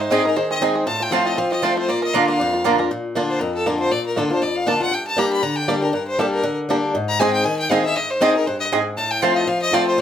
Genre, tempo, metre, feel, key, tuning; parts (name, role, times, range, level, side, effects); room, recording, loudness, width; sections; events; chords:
bluegrass; 237 BPM; 4/4; swing 56% on 8ths; Bb major; A4 = 443 Hz
bluegrass banjo; melody; 0.0-9.8 s; Ab3 to Bb4; -24 LUFS; right 5 dB
clear fiddle; melody; 0.0-10.0 s; A4 to Cb6; -22 LUFS; left 1 dB
picked swing-style acoustic guitar; accompaniment; 0.0-10.0 s; F2 to Ab4; -21 LUFS; left 2 dB
mandolin; stabs; 0.1-2.7, 7.2-9.8 s; Bb3 to Bb5; -21 LUFS; right 5 dB
moderate studio reverb, RT60 0.6 s; -17 LUFS; side -9 dB against mid
0.0-2.9 A section; 2.9-10.0 A section
0.0 Ab; 0.9 F/A; 1.9 Bb; 4.9 Gm; 6.9 Ab; 9.0 F/A